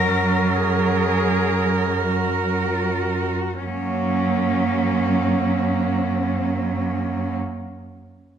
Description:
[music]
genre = classical, lyrical piece for cello ensemble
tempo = free time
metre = none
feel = none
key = F# major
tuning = A4 = 440 Hz
[part]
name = rich cello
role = melody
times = 0.0-7.4 s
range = C#4 to A#4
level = -27 LUFS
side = left 4 dB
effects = none
[part]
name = rich cello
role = second line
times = 0.0-7.4 s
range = A#3 to A#4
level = -24 LUFS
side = right 6 dB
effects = none
[part]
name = rich cello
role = accompaniment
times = 0.0-7.3 s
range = F#3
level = -25 LUFS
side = equal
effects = none
[part]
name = warm cello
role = bass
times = 0.0-7.4 s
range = F#2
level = -25 LUFS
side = right 2 dB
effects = none
[sound]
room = wet recital hall reverb, RT60 1.7 s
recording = minimal, uncompressed stereo recording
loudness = -19 LUFS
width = side -8 dB against mid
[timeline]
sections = 0.0-3.6 A section; 3.6-8.4 B section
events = slowing down 0.0-3.6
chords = 0.0 F#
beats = free time

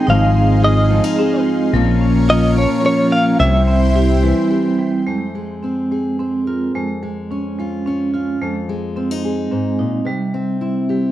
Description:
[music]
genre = acoustic folk-pop ballad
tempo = 108 BPM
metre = 3/4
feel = straight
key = F minor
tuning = A4 = 439 Hz
[part]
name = direct-recorded clean electric guitar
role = melody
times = 0.0-4.5 s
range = Db5 to F5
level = -18 LUFS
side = equal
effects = tremolo
[part]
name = fingerpicked steel-string acoustic guitar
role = accompaniment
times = 0.0-11.1 s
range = F2 to Bb4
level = -21 LUFS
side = left 5 dB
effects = none
[part]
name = lush unison pad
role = sustained chords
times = 0.0-5.1 s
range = Db4 to Db6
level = -27 LUFS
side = right 1 dB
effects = chorus
[part]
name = vibraphone with hard mallets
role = arpeggios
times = 0.0-11.1 s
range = F3 to F4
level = -19 LUFS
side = right 4 dB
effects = slapback echo
[part]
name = fingered electric bass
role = bass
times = 0.1-4.3 s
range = Ab1 to C2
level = -15 LUFS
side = equal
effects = none
[sound]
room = light reverb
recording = dry, close 1970s-style studio recording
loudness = -15 LUFS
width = side -13 dB against mid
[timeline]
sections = 0.0-5.1 A section; 5.1-11.1 B section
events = none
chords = 0.1 Fm7/Ab; 1.7 Bbm; 3.4 C; 5.1 Fm; 6.7 Db/F; 8.4 Fm7; 10.1 C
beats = | 0.08 0.64 1.19 | 1.74 2.29 2.85 | 3.40 3.96 4.51 | 5.07 5.63 6.19 | 6.75 7.30 7.86 | 8.41 8.96 9.51 | 10.07 10.62

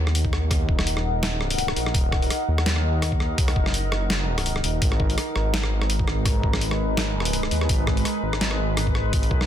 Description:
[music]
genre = half-time drum and bass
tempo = 167 BPM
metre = 4/4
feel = swing 55% on 16ths, half-time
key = Eb minor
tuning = A4 = 443 Hz
[part]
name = deep dark ambient pad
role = sustained chords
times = 0.0-9.5 s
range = Ab3 to Gb5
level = -28 LUFS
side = equal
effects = chorus, built-in reverb, sidechain pumping
[part]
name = koto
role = arpeggios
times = 0.0-1.2 s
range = none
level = barely audible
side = none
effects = none
[part]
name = dark detuned saw bass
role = bass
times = 0.0-9.5 s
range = Eb1 to Eb2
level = -24 LUFS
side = equal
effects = none
[part]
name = boom bap sampler-style drum kit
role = drums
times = 0.1-9.5 s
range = hi-hat, rim click, snare drum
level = -27 LUFS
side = equal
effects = small room ambience
[part]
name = electronic kick drum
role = drums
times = 0.2-9.4 s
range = none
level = -23 LUFS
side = equal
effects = small room ambience
[sound]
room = light reverb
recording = dense, heavily limited modern master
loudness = -20 LUFS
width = side -10 dB against mid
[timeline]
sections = 0.0-9.5 A section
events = none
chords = 0.0 Ebm; 4.8 Abm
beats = 0.15 | 0.51 0.87 1.23 1.58 | 1.94 2.30 2.66 3.02 | 3.38 3.74 4.10 4.46 | 4.82 5.18 5.54 5.90 | 6.25 6.61 6.97 7.33 | 7.69 8.05 8.41 8.77 | 9.13

